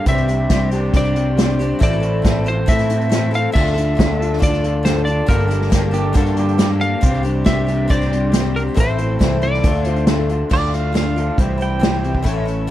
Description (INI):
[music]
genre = folk rock and heartland rock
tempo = 138 BPM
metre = 4/4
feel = straight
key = D minor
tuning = A4 = 440 Hz
[part]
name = electric slide guitar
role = melody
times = 0.0-10.0 s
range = Bb4 to F5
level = -22 LUFS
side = right 1 dB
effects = none
[part]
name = picked twelve-string acoustic guitar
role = accompaniment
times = 0.0-12.7 s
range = G2 to A4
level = -25 LUFS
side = left 6 dB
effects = none
[part]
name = pedal harmonium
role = sustained chords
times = 0.0-12.7 s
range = Bb3 to C6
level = -30 LUFS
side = right 1 dB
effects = none
[part]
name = electric guitar through a small old amp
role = riff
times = 0.0-12.7 s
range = G2 to A4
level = -24 LUFS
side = equal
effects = ensemble chorus
[part]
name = picked electric bass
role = bass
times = 0.1-12.7 s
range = G1 to A2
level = -20 LUFS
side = equal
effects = none
[part]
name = unplugged drum kit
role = drums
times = 0.1-12.6 s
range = crash cymbal, hi-hat, kick drum, snare drum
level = -18 LUFS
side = equal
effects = none
[part]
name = pedal steel guitar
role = second line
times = 5.9-6.7, 10.5-12.5 s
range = G4 to G5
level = -25 LUFS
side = right 4 dB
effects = none
[sound]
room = little or no reverb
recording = none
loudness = -15 LUFS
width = side -13 dB against mid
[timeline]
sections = 0.0-10.5 A section; 10.5-12.7 B section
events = pedal steel guitar solo 10.5-12.7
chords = 0.1 Csus2; 1.8 Am; 3.6 Dm; 5.3 Gmadd9; 7.0 Csus2; 8.8 Am; 9.6 Dm; 11.4 C